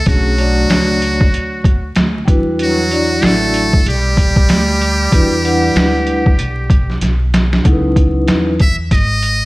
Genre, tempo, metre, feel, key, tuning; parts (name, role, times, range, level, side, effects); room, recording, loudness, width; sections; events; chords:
hip hop, jazz-hop; 95 BPM; 4/4; swing 61% on 16ths; A4 = 440 Hz
trumpet with metal mute; melody; 0.0-9.4 s; F#4 to E5; -18 LUFS; equal; slapback echo
trombone with plunger mute; second line; 0.0-7.0 s; F#3 to A3; -23 LUFS; right 2 dB
upright bass; bass; 0.0-9.4 s; G#1 to E2; -18 LUFS; equal
vibraphone with soft mallets; accompaniment; 0.1-8.5 s; F#3 to F#5; -17 LUFS; left 1 dB
trip hop sampler-style drum kit; drums; 0.1-9.4 s; hi-hat, kick drum, snare drum; -13 LUFS; equal; overdrive, vintage 12-bit sampler grit
light reverb, small room ambience; vinyl crackle; -11 LUFS; side -20 dB against mid
0.0-7.7 A section; 7.7-9.4 B section
drum fill 7.0-7.7; muted trumpet solo 7.7-9.4
0.0 Bm9; 2.3 Em9; 7.7 C#m11